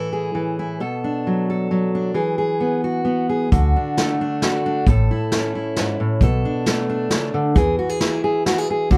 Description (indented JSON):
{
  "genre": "acoustic folk duo or small band",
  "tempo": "133 BPM",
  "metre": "3/4",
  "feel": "straight",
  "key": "unclear",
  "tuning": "A4 = 440 Hz",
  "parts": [
    { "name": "fingerpicked steel-string acoustic guitar", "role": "accompaniment", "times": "0.0-9.0 s", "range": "G#2 to A4", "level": "-22 LUFS", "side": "equal", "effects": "none" },
    { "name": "upright bass", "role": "bass", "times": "3.5-9.0 s", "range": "A1 to E2", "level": "-21 LUFS", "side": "equal", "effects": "none" },
    { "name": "vintage brush drum kit", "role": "drums", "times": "3.5-9.0 s", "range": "hi-hat, kick drum, snare drum", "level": "-23 LUFS", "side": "equal", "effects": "none" }
  ],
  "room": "light reverb",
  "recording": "none",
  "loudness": "-20 LUFS",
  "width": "mono",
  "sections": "0.0-3.5 A section; 3.5-9.0 B section",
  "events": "none",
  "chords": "0.0 A5; 0.8 Bm7; 2.2 E; 3.5 D; 4.9 A; 6.2 Bm7; 7.6 E"
}